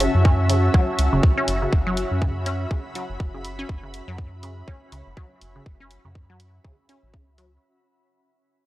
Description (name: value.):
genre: minimal techno.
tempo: 122 BPM.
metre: 4/4.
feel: swing 58% on 16ths.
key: F# minor.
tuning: A4 = 437 Hz.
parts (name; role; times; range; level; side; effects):
resonant blip pluck; riff; 0.0-7.4 s; C#3 to C#4; -28 LUFS; equal; phaser, sidechain pumping, tape echo.
rubbery square bass; bass; 0.0-7.6 s; F#1 to F#2; -23 LUFS; equal; sidechain pumping.
electronic hi-hat; drums; 0.0-7.5 s; none; -29 LUFS; equal; studio reverb.
granular cloud pad; texture; 0.0-7.6 s; C#4 to B5; -27 LUFS; equal; built-in reverb, sidechain pumping.
electronic kick drum; drums; 0.2-7.2 s; none; -20 LUFS; equal; studio reverb.
room: digital ambience.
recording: dry, gritty hardware recording, cassette tape.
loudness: -19 LUFS.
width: side -16 dB against mid.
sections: 0.0-7.6 A section.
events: fade-out 0.0-7.6.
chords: 0.0 F#m7.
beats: 0.25 0.74 1.23 | 1.73 2.22 2.71 3.20 | 3.69 4.18 4.68 5.17 | 5.66 6.15 6.64 7.13.